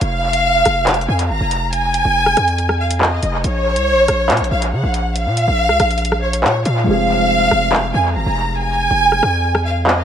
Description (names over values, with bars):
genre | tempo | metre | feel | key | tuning
hip hop, drill | 140 BPM | 4/4 | half-time | unclear | A4 = 435 Hz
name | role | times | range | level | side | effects
warm studio violin section | melody | 0.0-10.0 s | Db5 to Bb5 | -16 LUFS | equal | tape echo
distorted 808-style bass | bass | 0.0-10.0 s | F1 to Db3 | -19 LUFS | equal | distortion
drill drum kit | drums | 0.0-10.0 s | handclaps, hi-hat, rim click | -20 LUFS | equal | tape echo
felt-muted upright piano | accompaniment | 6.8-10.0 s | F3 to Ab4 | -22 LUFS | equal | tape echo
room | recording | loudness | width
light reverb, small room ambience | echo-heavy mix | -14 LUFS | side -8 dB against mid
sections
0.0-10.0 A section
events
hi-hats muted 6.9-10.0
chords
0.0 Fm; 3.4 Bbm; 6.9 Fm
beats
| 0.01 0.44 0.87 1.30 | 1.73 2.15 2.58 3.01 | 3.44 3.87 4.30 4.73 | 5.16 5.58 6.01 6.44 | 6.87 7.30 7.73 8.15 | 8.58 9.01 9.44 9.87